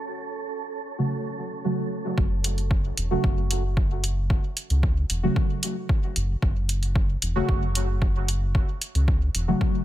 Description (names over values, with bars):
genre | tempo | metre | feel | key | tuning
dub techno | 113 BPM | 4/4 | straight | F# minor | A4 = 440 Hz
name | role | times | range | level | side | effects
wind-like tuned noise texture | texture | 0.0-2.2 s | C#4 to A4 | -36 LUFS | right 4 dB | built-in reverb, sidechain pumping
deep mellow chord stab | stabs | 1.0-9.8 s | C#3 to F#4 | -28 LUFS | equal | chorus, phaser, sidechain pumping, dub echo
round analog bass | bass | 2.2-9.5 s | E1 to C#2 | -25 LUFS | equal | sidechain pumping
electronic kick drum | drums | 2.2-9.7 s | none | -23 LUFS | equal | overdrive
electronic hi-hat | drums | 2.4-9.5 s | none | -28 LUFS | right 1 dB | overdrive
room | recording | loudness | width
light reverb, digital ambience | none | -22 LUFS | side -14 dB against mid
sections
0.0-2.2 A section; 2.2-9.8 B section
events
none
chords
0.0 F#m